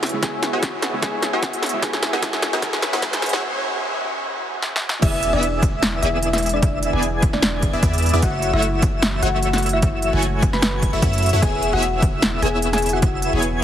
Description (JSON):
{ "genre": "future bass", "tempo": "150 BPM", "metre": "4/4", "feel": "swing 54% on 16ths, half-time", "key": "unclear", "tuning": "A4 = 440 Hz", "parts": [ { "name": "soft round pluck", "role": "accompaniment", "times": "0.0-3.4 s", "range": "C#3 to E4", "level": "-36 LUFS", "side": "right 2 dB", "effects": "analog chorus, sidechain pumping, digital delay" }, { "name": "airy breathy pad", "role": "sustained chords", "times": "0.0-13.6 s", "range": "E2 to F#4", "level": "-32 LUFS", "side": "equal", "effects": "chorus, sidechain pumping" }, { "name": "supersaw stab", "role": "riff", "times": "0.0-13.6 s", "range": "A3 to G#5", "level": "-24 LUFS", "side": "equal", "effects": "sidechain pumping, low-pass filter" }, { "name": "big-room dance drum kit", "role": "drums", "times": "0.0-13.5 s", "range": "crash cymbal, hi-hat, snare drum", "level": "-23 LUFS", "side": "equal", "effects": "overdrive, high-pass filter on snare, high-pass filter on hats, high-pass filter on cymbals, high-pass filter on room" }, { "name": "riser", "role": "sound effects", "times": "0.1-3.4 s", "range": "none", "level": "-32 LUFS", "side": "right 1 dB", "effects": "none" }, { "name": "thumb-piano-like synth pluck", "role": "melody", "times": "0.2-13.3 s", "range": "D4 to B5", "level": "-26 LUFS", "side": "left 2 dB", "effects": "chorus, sidechain pumping, dub echo" }, { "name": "electronic kick drum", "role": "drums", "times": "0.2-13.1 s", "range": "none", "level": "-20 LUFS", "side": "equal", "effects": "overdrive" }, { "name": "airy dreamy lead", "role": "arpeggios", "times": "5.0-13.6 s", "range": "E5 to G#5", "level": "-28 LUFS", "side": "equal", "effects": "chorus, phaser, sidechain pumping" }, { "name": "long sustained 808-style bass", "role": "bass", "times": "5.0-13.6 s", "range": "E1 to F#2", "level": "-23 LUFS", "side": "equal", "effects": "sidechain pumping" } ], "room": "moderate huge ambient reverb, RT60 7.2 s", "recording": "heavily compressed radio sound, multiband compression, high-pass filter", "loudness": "-17 LUFS", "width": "side -10 dB against mid", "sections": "0.0-5.0 A section; 5.0-13.6 B section", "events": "build-up 0.0-5.0; drum fill 0.0-3.4, 4.6-5.0; break 3.4-5.0; drop 5.0-13.6", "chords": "0.0 C#m7/E; 1.8 E69; 5.0 E7; 8.2 F#m7; 11.4 C#m7/E", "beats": "| 0.23 0.62 1.02 1.43 | 1.82 2.23 2.62 3.02 | 3.42 3.83 4.22 4.62 | 5.03 5.42 5.83 6.22 | 6.62 7.03 7.42 7.83 | 8.22 8.62 9.03 9.43 | 9.82 10.22 10.62 11.03 | 11.43 11.82 12.22 12.62 | 13.03 13.43" }